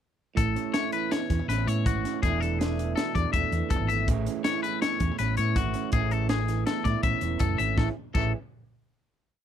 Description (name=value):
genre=math rock and midwest emo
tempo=162 BPM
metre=5/4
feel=straight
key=A major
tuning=A4 = 440 Hz
part: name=electric guitar through a small old amp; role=accompaniment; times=0.3-8.3 s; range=E2 to G#4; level=-31 LUFS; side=right 10 dB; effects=none
part: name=twangy electric guitar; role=arpeggios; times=0.4-8.3 s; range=F#4 to E5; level=-30 LUFS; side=left 11 dB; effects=none
part: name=hollow-body short-scale fingered electric bass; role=bass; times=0.4-8.3 s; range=E1 to A2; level=-28 LUFS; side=equal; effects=none
part: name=crisp fusion drum kit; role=drums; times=0.4-8.2 s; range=crash cymbal, hi-hat, kick drum, snare drum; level=-30 LUFS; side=equal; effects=none
room=little or no reverb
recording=none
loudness=-24 LUFS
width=side -9 dB against mid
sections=0.4-7.8 A section; 7.8-9.4 final chord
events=none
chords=0.4 Aadd9; 2.2 E7sus4; 4.1 Amaj9; 5.9 Amaj7